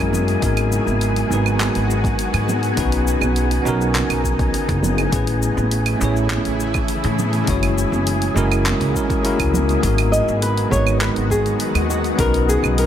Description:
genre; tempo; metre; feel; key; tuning
sunset chillout; 102 BPM; 4/4; straight; G# minor; A4 = 440 Hz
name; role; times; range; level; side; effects
bell-like tine electric piano; accompaniment; 0.0-12.9 s; G#3 to C#5; -22 LUFS; moving between left 6 dB and right 5 dB; auto-pan, digital delay
shimmering ambient pad; sustained chords; 0.0-12.9 s; C#3 to G#4; -26 LUFS; equal; chorus, built-in reverb
upright bass; bass; 0.0-12.9 s; F#1 to A2; -21 LUFS; equal; none
deep house drum kit; drums; 0.0-12.9 s; claves, handclaps, hi-hat, shaker; -26 LUFS; right 2 dB; studio reverb
wind-like tuned noise texture; texture; 0.0-12.9 s; D#4 to G#5; -28 LUFS; left 2 dB; built-in reverb
congas; percussion; 0.1-9.7 s; none; -27 LUFS; right 3 dB; none
electronic kick drum; drums; 0.4-12.3 s; none; -24 LUFS; equal; studio reverb
flamenco guitar; melody; 10.1-12.9 s; F#4 to D#5; -21 LUFS; equal; ping-pong delay
room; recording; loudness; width
light reverb, digital ambience; none; -16 LUFS; side -10 dB against mid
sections
0.0-9.8 A section; 9.8-12.9 B section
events
none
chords
0.4 G#m7; 2.8 Bmaj9; 5.1 Amaj7; 7.5 F#9; 9.8 G#m7; 12.2 Bmaj9

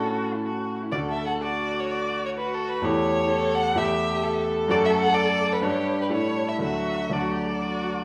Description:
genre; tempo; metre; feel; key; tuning
quick classical-period movement for piano trio; 127 BPM; 4/4; uneven beats, rubato; D major; A4 = 440 Hz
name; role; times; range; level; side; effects
warm violin; melody; 0.0-8.0 s; A4 to F#5; -30 LUFS; equal; none
warm cello; second line; 0.0-8.0 s; E4 to A4; -31 LUFS; equal; none
bright concert grand piano; accompaniment; 0.0-8.0 s; D2 to B4; -28 LUFS; equal; none
room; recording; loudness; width
wet recital hall reverb, RT60 1.3 s; none; -25 LUFS; mono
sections
0.0-8.0 A section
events
none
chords
0.0 A; 0.9 D; 2.8 A7/E; 4.7 D/F#; 5.6 G; 6.1 A7; 6.6 D

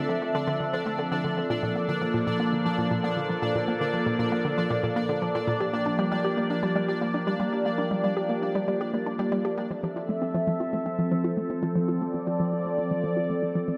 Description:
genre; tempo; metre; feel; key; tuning
ambient, sequencer-driven space music; 117 BPM; 4/4; straight; unclear; A4 = 439 Hz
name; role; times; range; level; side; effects
phased analog pad; sustained chords; 0.0-13.8 s; F3 to E5; -29 LUFS; equal; phaser, chorus
hollow square pluck; riff; 0.0-13.7 s; Bb2 to G4; -32 LUFS; equal; chorus, delay
pulsing gated texture; texture; 0.0-9.7 s; D4 to D5; -37 LUFS; equal; chorus, built-in reverb
room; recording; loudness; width
wet lush hall reverb, RT60 2.9 s; none; -27 LUFS; mono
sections
0.0-9.7 A section; 9.7-13.8 B section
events
filter sweep on synth arpeggio sound 9.7-13.8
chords
0.0 Dm7; 1.5 Bbmaj7; 5.6 Gm7; 9.7 Fmaj7

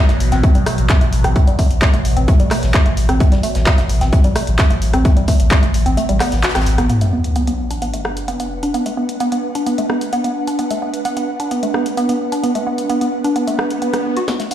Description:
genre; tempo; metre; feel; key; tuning
driving peak-time techno; 130 BPM; 4/4; straight; B minor; A4 = 437 Hz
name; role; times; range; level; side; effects
woody wave-folded pluck; riff; 0.0-14.5 s; G3 to F#4; -20 LUFS; equal; chorus, tube saturation, sidechain pumping, ping-pong delay
overtone-sweeping drone; drone; 0.0-6.9 s; B2 to F#3; -26 LUFS; equal; chorus, built-in reverb, sidechain pumping
saturated sub bass; bass; 0.1-6.9 s; A1; -18 LUFS; equal; overdrive, sidechain pumping, low-pass filter
punchy analog drum machine; drums; 0.1-14.5 s; handclaps, hi-hat, rim click, snare drum; -23 LUFS; equal; sidechain pumping on hats, sidechain pumping on cymbals
tight metal drum kit; drums; 0.1-6.8, 14.3-14.5 s; hi-hat, snare drum; -33 LUFS; left 2 dB; none
electronic kick drum; drums; 0.4-5.6, 14.3-14.4 s; none; -13 LUFS; equal; overdrive, high-pass filter on kick
sub drop, swell and riser; sound effects; 6.9-8.7, 13.5-14.5 s; none; -21 LUFS; equal; none
ethereal airy pad; texture; 7.6-14.5 s; D4 to F#5; -22 LUFS; right 2 dB; ensemble chorus, built-in reverb, sidechain pumping
room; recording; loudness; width
light reverb; played on a big sound system in a bare room, large studio reverb; -14 LUFS; side -11 dB against mid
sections
0.0-6.9 A section; 6.9-14.3 B section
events
break 6.0-6.9; band accent 6.4; impact 6.9-8.7; swell 13.5-14.3; drum fill 14.3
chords
0.0 N.C.; 6.9 Bm

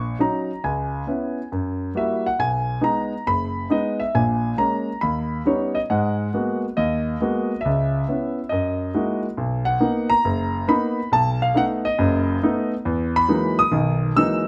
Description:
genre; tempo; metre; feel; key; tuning
solo jazz; 137 BPM; 4/4; swing 66% on 8ths; G# minor, B major from 9.4 s; A4 = 440 Hz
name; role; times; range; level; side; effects
warm concert grand piano; solo; 0.0-14.5 s; F#1 to E6; -22 LUFS; equal; none
room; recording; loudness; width
light reverb; recorded outdoors, with no room sound; -22 LUFS; mono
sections
0.0-9.4 A section; 9.4-14.5 B section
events
none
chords
0.0 D#m7; 0.6 C#m7; 1.5 F#7b9; 2.4 B6; 4.1 A#m7; 5.0 D#7b13; 5.9 G#m9; 7.6 C#m7; 8.5 F#13; 9.4 Bmaj7; 11.1 B7; 12.9 Emaj9#11

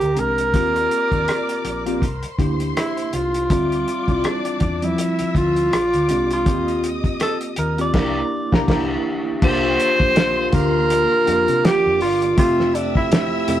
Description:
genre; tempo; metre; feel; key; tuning
lush 1970s-style soul; 81 BPM; 4/4; swing 58% on 16ths; unclear; A4 = 440 Hz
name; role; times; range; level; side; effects
warm tenor saxophone; melody; 0.0-13.6 s; D4 to D5; -20 LUFS; equal; none
warm studio string section; second line; 0.0-13.6 s; Bb4 to E6; -31 LUFS; left 3 dB; none
vintage muted fingered electric bass; bass; 0.0-13.6 s; F1 to C3; -27 LUFS; equal; none
cloth-damped thuddy drum kit; drums; 0.0-13.6 s; crash cymbal, hi-hat, kick drum, rim click, snare drum; -21 LUFS; equal; none
tine electric piano; accompaniment; 0.2-13.6 s; F3 to E5; -24 LUFS; equal; medium stereo tremolo
dark French horn section; sustained chords; 9.4-13.6 s; D3 to G4; -26 LUFS; right 3 dB; none
room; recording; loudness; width
moderate studio reverb, RT60 0.5 s; rough rehearsal-room recording; -17 LUFS; side -12 dB against mid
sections
0.0-9.4 A section; 9.4-13.6 B section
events
band accent 7.9-9.4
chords
0.0 Bb13; 0.5 Eb69; 2.0 C9; 3.5 Dm11; 5.7 Bb13; 6.5 Eb69; 7.9 C9; 9.4 C9sus4; 12.4 Fmaj9

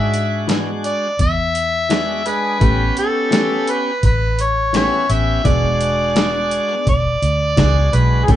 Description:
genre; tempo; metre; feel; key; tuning
straight-eighth soul blues; 85 BPM; 4/4; straight; E mixolydian; A4 = 439 Hz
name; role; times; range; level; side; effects
overdriven harmonica; melody; 0.0-8.4 s; G#4 to E5; -18 LUFS; left 1 dB; none
bright tonewheel organ; accompaniment; 0.0-8.4 s; G#3 to G#4; -23 LUFS; right 2 dB; slow rotary speaker, overdrive
vintage muted fingered electric bass; bass; 0.0-8.4 s; E1 to G#2; -19 LUFS; equal; none
boom bap sampler-style drum kit; drums; 0.1-8.4 s; hi-hat, kick drum, snare drum; -19 LUFS; equal; none
direct-recorded clean electric guitar; stabs; 0.5-8.4 s; E3 to G#4; -23 LUFS; left 3 dB; harmonic tremolo
room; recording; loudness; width
moderate studio ambience, RT60 0.5 s; band playing live in one room, nothing above 10.4 kHz; -15 LUFS; side -12 dB against mid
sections
0.0-8.4 A section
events
none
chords
0.0 E7; 2.6 A7; 5.4 E7

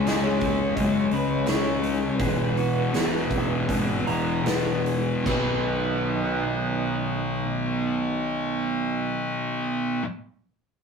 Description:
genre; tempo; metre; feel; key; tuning
rock, shoegaze and dream pop; 74-86 BPM; 4/4; straight; B major; A4 = 439 Hz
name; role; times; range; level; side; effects
pure sine lead; melody; 0.0-4.4 s; B4 to D#5; -32 LUFS; right 8 dB; chorus
phased analog pad; sustained chords; 0.0-9.3 s; D#4 to G#5; -36 LUFS; right 4 dB; phaser, chorus
electric guitar through a small old amp; arpeggios; 0.0-6.2 s; F#4 to A#5; -32 LUFS; left 2 dB; none
crunchy overdriven guitar; riff; 0.0-10.0 s; E2 to B4; -32 LUFS; right 3 dB; none
thick fuzz guitar; riff; 0.0-10.0 s; E2 to C#4; -25 LUFS; left 2 dB; distortion
fuzz picked electric bass; bass; 0.1-10.0 s; E1 to F#2; -32 LUFS; equal; overdrive
huge arena drum kit; drums; 0.1-5.5 s; china cymbal, hi-hat, kick drum, snare drum; -29 LUFS; right 1 dB; none
room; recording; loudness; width
moderate small room reverb, RT60 0.6 s; rough rehearsal-room recording; -22 LUFS; side -6 dB against mid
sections
0.0-5.3 A section; 5.3-8.5 B section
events
slowing down 0.0-5.3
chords
0.0 C#m; 2.2 Eadd9; 5.3 B

